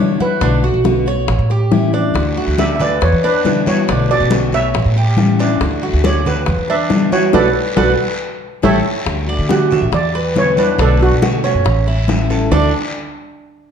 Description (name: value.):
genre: latin, Cuban son and guajira.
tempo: 139 BPM.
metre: 4/4.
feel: straight.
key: D major.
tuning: A4 = 442 Hz.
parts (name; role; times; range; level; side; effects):
steel pan; melody; 0.0-12.7 s; D4 to E5; -19 LUFS; right 2 dB; none.
picked steel-string acoustic guitar; accompaniment; 0.0-12.7 s; B2 to F#4; -21 LUFS; left 6 dB; none.
Cuban tres; arpeggios; 0.0-12.7 s; C#4 to E5; -20 LUFS; right 4 dB; none.
upright bass; bass; 0.0-12.7 s; A1 to E3; -17 LUFS; equal; none.
bongos; percussion; 0.2-12.6 s; none; -24 LUFS; left 5 dB; none.
congas; percussion; 0.2-12.6 s; none; -22 LUFS; left 2 dB; none.
guiro; percussion; 2.1-12.6 s; none; -28 LUFS; left 3 dB; none.
room: moderate large studio reverb, RT60 1.2 s.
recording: dark, warm production.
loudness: -12 LUFS.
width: side -7 dB against mid.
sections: 0.0-9.1 A section; 9.1-12.5 B section; 12.5-13.7 C section.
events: band accent 7.3-9.1; drum fill 8.2-9.1.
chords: 0.4 Bm7; 1.3 A7; 2.1 D; 3.0 Em7; 3.9 Bm7; 4.7 A7; 5.6 D; 6.5 Em7; 7.3 Bm7; 8.2 A7; 9.1 D; 9.9 Em7; 10.8 Bm7; 11.7 A7; 12.5 D.